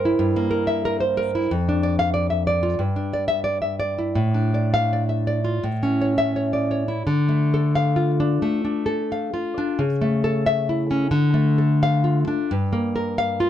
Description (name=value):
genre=romantic piece for solo classical guitar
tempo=80-94 BPM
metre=4/4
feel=rubato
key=D minor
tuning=A4 = 440 Hz
part: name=nylon-string guitar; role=solo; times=0.0-13.5 s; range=F2 to F5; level=-19 LUFS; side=equal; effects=none
room=light reverb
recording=dark, warm production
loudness=-19 LUFS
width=side -10 dB against mid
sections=0.0-7.1 A section; 7.1-13.5 B section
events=none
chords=0.0 Edim/G; 1.5 Dm/F; 2.8 Em7/G; 4.2 Dm/A; 5.6 A; 7.1 Dm; 9.8 A/C#; 11.1 Dm; 12.5 Gm7